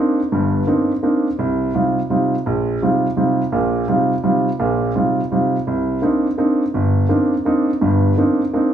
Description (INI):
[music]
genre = jazz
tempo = 168 BPM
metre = 3/4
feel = swing 64% on 8ths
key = C minor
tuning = A4 = 441 Hz
[part]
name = warm concert grand piano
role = solo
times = 0.0-8.7 s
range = G1 to F4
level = -15 LUFS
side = right 1 dB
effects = none
[sound]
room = moderate large studio reverb, RT60 1.0 s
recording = small room ambience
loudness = -15 LUFS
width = side -9 dB against mid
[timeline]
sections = 0.0-8.7 A section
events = none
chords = 0.0 Cm9; 1.4 Ebadd9; 5.7 Cm9